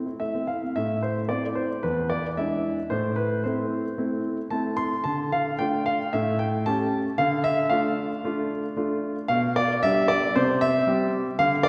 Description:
classical-period piano sonatina; 113 BPM; 4/4; rubato; A minor; A4 = 436 Hz
warm baby grand piano; solo; 0.0-11.7 s; E2 to C6; -25 LUFS; equal
wet concert hall reverb, RT60 2.1 s; heard from further back in the room; -25 LUFS; mono
0.8-11.7 A section
0.0 Am; 1.8 E7; 2.9 Am; 5.0 Dm; 6.1 A7; 7.2 Dm; 9.3 G/B; 10.4 C

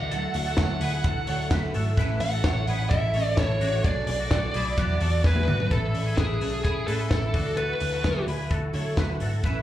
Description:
jangly indie pop; 129 BPM; 4/4; straight; A4 = 440 Hz
high-gain lead guitar; melody; 0.0-8.2 s; G#4 to F#5; -29 LUFS; equal; distortion, slapback echo, tape echo
picked twelve-string acoustic guitar; accompaniment; 0.0-9.6 s; A2 to F#4; -33 LUFS; right 4 dB; slapback echo
twelve-string electric guitar; arpeggios; 0.0-9.6 s; B3 to C#5; -35 LUFS; left 3 dB; ensemble chorus, slapback echo
vintage muted picked electric bass; bass; 0.0-9.6 s; G#1 to D3; -28 LUFS; equal
compact cocktail drum kit; drums; 0.1-9.5 s; hi-hat, kick drum, ride cymbal, snare drum, toms; -27 LUFS; equal
small room ambience; live gig heard through the venue's PA, club reverb; -22 LUFS; side -13 dB against mid
0.0-5.7 A section; 5.7-9.6 B section
drum fill 5.2-5.7
0.0 Dadd9; 2.0 A; 3.8 Bm7; 4.8 Esus2; 5.7 A; 7.3 Dadd9

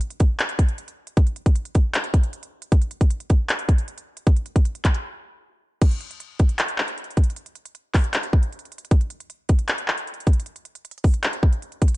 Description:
hip hop; 155 BPM; 4/4; half-time
trap drum kit; drums; 0.0-12.0 s; crash cymbal, handclaps, hi-hat, kick drum; -18 LUFS; equal; vintage 12-bit sampler grit
digital ambience; nothing above 10.5 kHz; -20 LUFS; side -19 dB against mid
0.0-5.8 A section; 5.8-12.0 B section
break 5.0-5.8

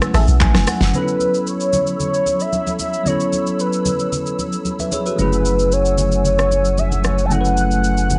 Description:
amapiano; 113 BPM; 4/4; straight; A4 = 440 Hz
bell-like tine electric piano; accompaniment; 0.0-8.2 s; F#3 to G#5; -25 LUFS; equal
hollow soft pad; sustained chords; 0.0-8.2 s; F#3 to F#6; -31 LUFS; equal; ensemble chorus, sidechain pumping
smooth R&B drum kit; drums; 0.0-8.2 s; handclaps, hi-hat, kick drum, rim click, shaker, snare drum; -26 LUFS; equal
deep log drum bass; bass; 0.1-0.9 s; F#1 to B1; -17 LUFS; equal
congas; percussion; 0.1-8.2 s; -28 LUFS; equal
warm velvety synth lead; melody; 0.9-8.2 s; B4 to A5; -22 LUFS; equal; chorus, tape echo
warm sub bass; bass; 5.2-8.2 s; F#1; -22 LUFS; equal
digital ambience; dry, gritty hardware recording, cassette tape, nothing above 10.6 kHz; -18 LUFS; mono
0.9-8.2 A section
tine electric piano fill 0.1-0.9
0.0 F#m9

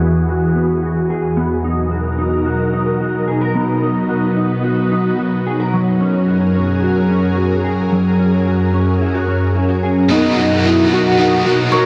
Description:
dream pop; 110 BPM; 4/4; straight; B major; A4 = 439 Hz
ethereal airy pad; sustained chords; 0.0-11.9 s; E2 to A#4; -19 LUFS; equal; ensemble chorus, built-in reverb, low-pass filter
mellow electric guitar; arpeggios; 0.0-11.9 s; E3 to A#4; -20 LUFS; equal; ensemble chorus, low-pass filter, analog delay
warm velvety synth lead; melody; 9.6-11.9 s; C#4 to F#4; -18 LUFS; equal; chorus, analog delay
biting overdriven guitar; accompaniment; 10.1-11.9 s; B2 to F#4; -21 LUFS; equal; tremolo, lush chorus
hammered dulcimer; texture; 10.1-11.9 s; C#5 to D#5; -26 LUFS; equal; analog delay
moderate recital hall reverb, RT60 1.5 s; dry, gritty hardware recording; -16 LUFS; mono
0.0-10.1 A section; 10.1-11.9 B section
filter sweep 0.0-10.1
0.0 Eadd9; 1.4 Bmaj7; 5.7 F#add9; 10.1 Bmaj7

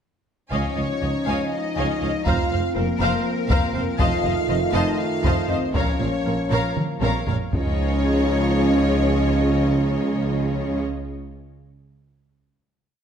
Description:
cinematic, epic orchestral film score; 240 BPM (eighths); 7/8; straight; Db major; A4 = 439 Hz
rich symphonic violin section; melody; 0.5-10.8 s; Bb4 to F5; -30 LUFS; left 6 dB
warm symphonic violin section; second line; 0.5-10.8 s; Bb4 to Bb5; -30 LUFS; left 3 dB
rich symphonic viola section; accompaniment; 0.5-10.8 s; F4 to F5; -29 LUFS; equal
clear trombone section; sustained chords; 0.5-10.8 s; Eb3 to Eb4; -30 LUFS; right 2 dB
mellow French horn section; sustained chords; 0.5-10.8 s; Bb3 to F4; -26 LUFS; left 2 dB
dark tuba; bass; 0.5-10.8 s; F1 to Db2; -28 LUFS; right 2 dB
rich symphonic cello section; bass; 0.5-10.8 s; Db2 to Db3; -28 LUFS; right 2 dB
rich symphonic double bass section; bass; 0.5-10.8 s; F1 to Db2; -27 LUFS; right 2 dB
taiko ensemble; drums; 0.5-7.6 s; -25 LUFS; equal
moderate scoring stage reverb, RT60 1.6 s; -19 LUFS; side -8 dB against mid
0.5-7.5 theme; 7.5-11.0 final chord
drum fill 6.8-7.5
0.5 Dbadd9; 2.3 Fsus4; 4.0 F7; 5.7 Bbm; 7.5 Dbadd9

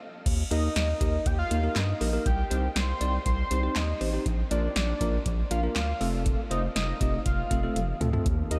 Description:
synth-pop; 120 BPM; 4/4; straight; F mixolydian; A4 = 439 Hz
round analog bass; bass; 0.3-8.6 s; F1 to G2; -31 LUFS; equal
electro analog drum machine; drums; 0.3-8.6 s; crash cymbal, handclaps, hi-hat, kick drum, snare drum, toms; -32 LUFS; equal
fat analog lead; melody; 0.5-8.6 s; D5 to C6; -35 LUFS; equal; diffuse ambient delay
bell-like tine electric piano; accompaniment; 0.5-8.6 s; A3 to D5; -35 LUFS; equal; phaser
chorused pulse-width pad; sustained chords; 8.3-8.6 s; Eb3 to G4; -48 LUFS; equal
moderate huge ambient reverb, RT60 7.8 s; dreamy mix soaked in reverb; -27 LUFS; mono
0.3-8.6 A section
stop 0.0; drum fill 7.8-8.3
0.3 Eb; 2.3 Cm; 4.3 Bb; 6.0 F

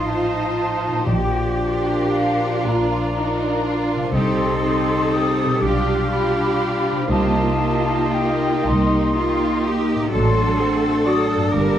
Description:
classical, slow romantic movement for symphony orchestra; 40 BPM (dotted quarters); 6/8; uneven beats, rubato; Bb major; A4 = 440 Hz
rich studio violin section; melody; 0.0-11.8 s; F#4 to C5; -32 LUFS; left 2 dB
clear clarinet; second line; 0.0-11.2 s; F4 to G4; -29 LUFS; left 1 dB
flute section; second line; 0.0-11.8 s; F5 to Eb6; -25 LUFS; left 1 dB
mellow cor anglais; second line; 0.0-11.2 s; D5 to F5; -30 LUFS; right 3 dB
rich studio violin section; second line; 0.0-11.8 s; C4 to F4; -31 LUFS; right 1 dB
rich symphonic viola section; accompaniment; 0.0-11.8 s; F#3 to Eb4; -27 LUFS; right 2 dB
mellow French horn section; sustained chords; 0.0-11.8 s; F3 to F4; -25 LUFS; left 1 dB
concert harp; arpeggios; 0.0-11.8 s; G2 to G4; -27 LUFS; left 4 dB
rich studio cello section; bass; 0.0-11.8 s; Eb4 to Bb4; -25 LUFS; right 2 dB
rich studio double bass section; bass; 0.0-11.8 s; G1 to C2; -25 LUFS; right 1 dB
timpani; percussion; 1.1-2.6 s; Bb2; -25 LUFS; equal
moderate scoring stage reverb, RT60 1.9 s; vinyl crackle; -17 LUFS; side -10 dB against mid
0.0-11.8 A section
0.0 F7/A; 1.1 Bb; 4.1 Cm; 5.6 G7/B; 7.1 Cm7; 10.1 D7/A

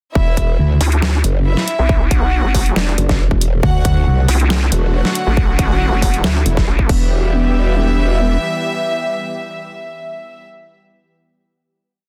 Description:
heavy wobble dubstep; 138 BPM; 4/4; half-time; E minor; A4 = 439 Hz
warm symphonic violin section; melody; 0.2-10.4 s; D4 to F#5; -26 LUFS; equal; digital delay
growl bass; bass; 0.2-8.4 s; E1 to D2; -17 LUFS; equal; chorus, overdrive
electronic kick drum; drums; 0.2-7.0 s; -19 LUFS; equal; overdrive
dubstep drum kit; drums; 0.4-7.0 s; crash cymbal, hi-hat, snare drum; -23 LUFS; equal; overdrive
vowel-sweep wobble bass; bass; 0.8-6.9 s; E1 to D2; -18 LUFS; equal; chorus, overdrive
supersaw pad; sustained chords; 3.6-10.4 s; D3 to G4; -27 LUFS; equal; sidechain pumping
little or no reverb; dense, heavily limited modern master; -16 LUFS; mono
0.2-7.1 drop; 7.1-10.6 final hit
drop 0.2-7.1
0.2 Em; 3.6 D; 6.9 Em

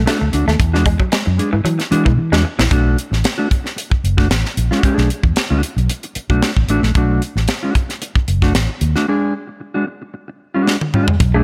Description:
funk; 113 BPM; 4/4; straight; B dorian; A4 = 436 Hz
electric guitar through a small old amp; riff; 0.0-2.7, 11.3-11.4 s; E3 to A3; -25 LUFS; equal
fingered electric bass with an envelope filter; bass; 0.0-11.4 s; F#1 to E3; -19 LUFS; equal
mellow electric guitar; accompaniment; 0.1-11.4 s; G#3 to G#4; -22 LUFS; equal
tight funk drum kit; drums; 0.1-11.3 s; hi-hat, kick drum, snare drum, toms; -20 LUFS; equal
light reverb, small room ambience; -17 LUFS; mono
0.0-2.7 A section; 2.7-11.2 B section
drum fill 2.2-2.7, 10.7-11.2; break 9.1-11.2
0.0 Bm7 (rootless); 0.6 E9; 2.7 Bm7; 9.1 D

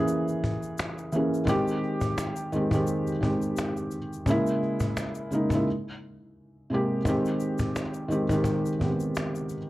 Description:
lo-fi hip hop; 86 BPM; 4/4; swing 58% on 16ths; Ab major; A4 = 440 Hz
felt-muted upright piano; accompaniment; 0.0-9.7 s; C3 to Ab4; -26 LUFS; equal; cassette tape, plate reverb
cajon; drums; 0.1-9.6 s; -32 LUFS; left 1 dB; vintage 12-bit sampler grit
egg shaker; percussion; 0.1-9.7 s; -48 LUFS; left 8 dB
wet small room reverb, RT60 0.5 s; -25 LUFS; side -16 dB against mid
0.0-7.1 A section; 7.1-9.7 B section
break 5.7-7.1
0.0 Dbm6; 1.5 Abmaj7; 4.3 Dbm6; 5.7 Abmaj9; 7.1 Abmaj7

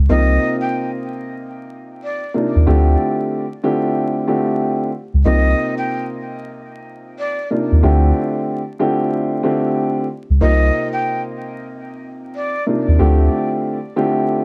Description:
hip hop, boom-bap hip-hop; 93 BPM; 4/4; swing 62% on 16ths; C dorian; A4 = 439 Hz
soft dub sub bass; bass; 0.0-13.3 s; C2 to Eb2; -15 LUFS; equal
breathy jazz flute; melody; 0.1-12.6 s; D5 to G5; -26 LUFS; equal; high-pass filter, low-pass filter, tape echo
dark grand piano; accompaniment; 0.1-14.4 s; C3 to G4; -21 LUFS; equal; cassette tape, high-pass filter, low-pass filter, plate reverb
moderate studio reverb, RT60 0.6 s; vinyl crackle; -18 LUFS; mono
0.1-14.4 A section
0.1 Cm11; 2.7 Dm11; 5.3 Cm11; 7.8 Dm11; 10.4 Cm11; 13.0 Dm11

